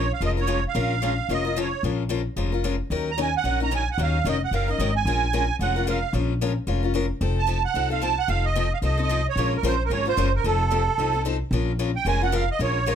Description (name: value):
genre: acoustic string swing (jazz manouche)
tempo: 223 BPM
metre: 4/4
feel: swing 58% on 8ths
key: Bb minor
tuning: A4 = 440 Hz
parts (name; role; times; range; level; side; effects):
- musette accordion; melody; 0.0-12.9 s; A4 to Bb5; -25 LUFS; right 6 dB; slapback echo
- picked steel-string acoustic guitar; accompaniment; 0.0-12.9 s; Eb3 to Bb4; -27 LUFS; left 7 dB; none
- upright bass; bass; 0.0-12.9 s; F1 to Eb2; -25 LUFS; equal; none
room: light reverb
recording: none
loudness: -21 LUFS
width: side -8 dB against mid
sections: 0.0-11.5 A section; 11.5-12.9 B section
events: accordion solo 11.5-12.9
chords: 0.0 Bbm7; 2.9 Ebm7; 5.1 Bbm7; 7.2 F7; 9.4 Bbm7; 10.4 F7; 11.5 Bbm7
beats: 0.21 0.48 | 0.75 1.02 1.29 1.56 | 1.83 2.10 2.37 2.64 | 2.91 3.18 3.45 3.71 | 3.98 4.25 4.52 4.79 | 5.06 5.33 5.60 5.87 | 6.14 6.41 6.67 6.94 | 7.21 7.48 7.75 8.02 | 8.29 8.56 8.83 9.10 | 9.37 9.63 9.90 10.17 | 10.44 10.71 10.98 11.25 | 11.52 11.79 12.06 12.33 | 12.60 12.87